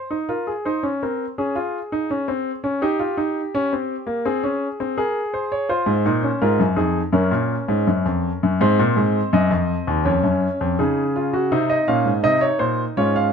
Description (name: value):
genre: classical, baroque-style 4-part fugue for grand piano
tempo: 83 BPM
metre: 4/4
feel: straight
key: Db major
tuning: A4 = 442 Hz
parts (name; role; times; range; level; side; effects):
- clear concert grand piano; solo; 0.0-13.3 s; Eb2 to F5; -18 LUFS; equal; none
room: light reverb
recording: minimal, uncompressed stereo recording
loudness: -18 LUFS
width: side -6 dB against mid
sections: 0.0-13.3 A section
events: none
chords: 0.0 Ab; 1.4 Dbmaj7; 2.8 Eb; 4.2 Ab/C; 5.7 Db; 7.1 Gbmaj9; 8.6 Ab7; 10.1 Db/F; 11.5 Ab